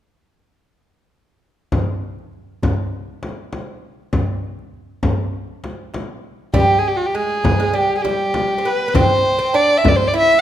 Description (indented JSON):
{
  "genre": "Arabic maqam ensemble",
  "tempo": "100 BPM",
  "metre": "4/4",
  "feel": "straight",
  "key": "unclear",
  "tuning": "A4 = 440 Hz",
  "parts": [
    { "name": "darbuka", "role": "percussion", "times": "1.7-10.0 s", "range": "none", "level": "-24 LUFS", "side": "equal", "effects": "none" },
    { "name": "frame drum", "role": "percussion", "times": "1.7-10.0 s", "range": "none", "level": "-21 LUFS", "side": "left 2 dB", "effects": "none" },
    { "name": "dark violin", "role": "melody", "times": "6.5-10.4 s", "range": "F#4-48c to E5", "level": "-16 LUFS", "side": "equal", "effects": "none" },
    { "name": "oud", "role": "second line", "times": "6.5-10.4 s", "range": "G3 to E4", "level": "-21 LUFS", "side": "right 2 dB", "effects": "none" }
  ],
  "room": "moderate recital hall reverb, RT60 1.5 s",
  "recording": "minimal, uncompressed stereo recording",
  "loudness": "-15 LUFS",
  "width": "side -11 dB against mid",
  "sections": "1.7-6.5 A section; 6.5-10.4 B section",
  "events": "none",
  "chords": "none"
}